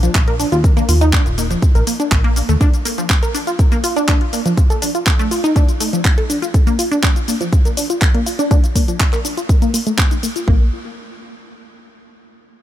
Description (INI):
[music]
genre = progressive house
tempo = 122 BPM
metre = 4/4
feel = straight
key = Bb major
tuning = A4 = 439 Hz
[part]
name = wide unison pluck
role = arpeggios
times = 0.0-10.7 s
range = F3 to Bb4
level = -19 LUFS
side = equal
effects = sidechain pumping, ping-pong delay
[part]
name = plucky analog bass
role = bass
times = 0.0-2.6, 10.5-10.7 s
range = Eb1 to Eb2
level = -16 LUFS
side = equal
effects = sidechain pumping
[part]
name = pop drum kit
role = drums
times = 0.0-10.5 s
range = cabasa, handclaps, hi-hat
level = -22 LUFS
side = equal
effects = sidechain pumping on hats, small room ambience, sidechain pumping on perc
[part]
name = electronic kick drum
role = drums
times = 0.1-10.6 s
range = none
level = -14 LUFS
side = equal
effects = small room ambience
[sound]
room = digital ambience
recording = none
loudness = -13 LUFS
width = side -12 dB against mid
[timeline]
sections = 0.0-10.5 A section; 10.5-12.4 B section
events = filter sweep on synth pluck 0.0-10.5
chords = 0.0 Bb; 0.6 Eb5; 2.6 Bb; 4.6 F; 6.5 Bb; 8.5 Ebsus2; 10.5 N.C.